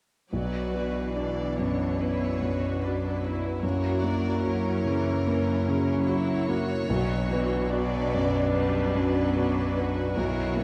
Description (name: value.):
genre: classical, romantic movement for piano and orchestra.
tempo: 73 BPM.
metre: 4/4.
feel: rubato.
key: B minor.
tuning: A4 = 440 Hz.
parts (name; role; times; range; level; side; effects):
warm grand piano; melody; 0.3-10.6 s; B1 to F#4; -29 LUFS; equal; none.
rich studio violin section; second line; 0.3-10.6 s; A#4 to D5; -37 LUFS; equal; none.
rich studio viola section; accompaniment; 0.3-10.6 s; E3 to F#4; -36 LUFS; equal; none.
warm French horn section; sustained chords; 0.3-10.6 s; F#3 to E4; -37 LUFS; equal; none.
rich studio cello section; bass; 0.3-10.6 s; F#2 to B2; -37 LUFS; equal; none.
room: moderate scoring stage reverb, RT60 1.7 s.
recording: dark, warm production.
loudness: -27 LUFS.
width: mono.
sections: 0.3-10.6 A section.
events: none.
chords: 0.3 Bm; 3.6 F#7; 6.9 Bm.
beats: | 0.32 1.16 2.01 2.83 | 3.63 4.44 5.27 6.08 | 6.88 7.71 8.54 9.37 | 10.18.